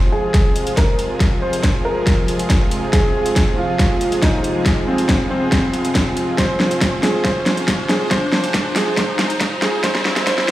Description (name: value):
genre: heavy wobble dubstep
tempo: 139 BPM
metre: 4/4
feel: half-time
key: F minor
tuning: A4 = 444 Hz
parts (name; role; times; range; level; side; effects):
- warm grand piano; melody; 0.0-10.5 s; C4 to C5; -22 LUFS; right 1 dB; low-pass filter, dub echo
- supersaw pad; sustained chords; 0.0-10.5 s; C3 to C5; -24 LUFS; right 1 dB; sidechain pumping
- riser; sound effects; 0.0-10.5 s; none; -28 LUFS; left 1 dB; none
- warbly tape-like pad; texture; 0.0-10.5 s; F4 to Bb5; -27 LUFS; equal; chorus, built-in reverb, sidechain pumping
- dubstep drum kit; drums; 0.3-10.5 s; hi-hat, snare drum; -20 LUFS; equal; small room ambience
- electronic kick drum; drums; 0.3-10.4 s; none; -18 LUFS; equal; small room ambience
room: moderate lush hall reverb, RT60 2.2 s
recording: played on a big sound system in a bare room, stone room reverb, high-pass filter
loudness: -15 LUFS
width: side -15 dB against mid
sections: 0.0-10.5 A section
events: build-up 0.0-10.5; drum fill 0.0-10.5; riser 0.0-10.5; filter sweep on grand piano 0.0-10.5; filter sweep 0.0-10.5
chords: 0.0 Fm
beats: 0.34 0.77 | 1.20 1.64 2.07 2.50 | 2.93 3.36 3.79 4.22 | 4.66 5.09 5.52 5.95 | 6.38 6.82 7.25 7.68 | 8.11 8.54 8.97 9.40 | 9.84 10.27